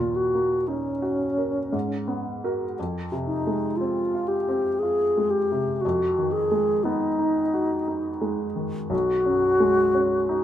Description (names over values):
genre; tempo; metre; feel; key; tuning
classical, impressionist duo for alto flute and grand piano; 58 BPM; 3/4; rubato; unclear; A4 = 443 Hz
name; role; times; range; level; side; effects
mellow alto flute; melody; 0.0-10.4 s; C#4 to G#4; -22 LUFS; left 1 dB; none
warm baby grand piano; accompaniment; 0.0-10.4 s; B1 to A#4; -27 LUFS; right 1 dB; none
room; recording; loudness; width
light reverb; minimal, uncompressed stereo recording; -22 LUFS; side -11 dB against mid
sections
0.0-10.4 A section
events
none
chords
0.0 D#m7; 1.7 G#m11; 2.8 Fm; 5.8 G#m7/E#; 8.9 Bsus2